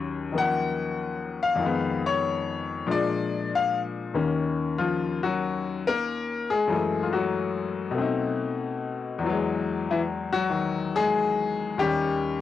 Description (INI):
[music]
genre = solo jazz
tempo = 94 BPM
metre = 4/4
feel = swing 69% on 8ths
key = Eb minor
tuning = A4 = 445 Hz
[part]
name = bright upright piano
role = solo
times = 0.0-12.4 s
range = Eb2 to Gb5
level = -24 LUFS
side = left 4 dB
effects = cassette tape
[sound]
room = light reverb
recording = home recording on cassette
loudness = -24 LUFS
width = side -12 dB against mid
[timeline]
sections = 0.0-4.1 A section; 4.1-12.4 B section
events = upright piano solo 0.0-4.1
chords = 0.0 Ebm7; 1.6 Fm7b5; 2.9 Bb7; 4.1 Ebm7; 6.7 Gbm9; 8.0 B7b9; 9.2 Emaj9; 11.8 Eb7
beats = 0.32 0.96 | 1.59 2.23 2.87 3.50 | 4.14 4.78 5.41 6.05 | 6.69 7.33 7.96 8.60 | 9.23 9.87 10.51 11.14 | 11.78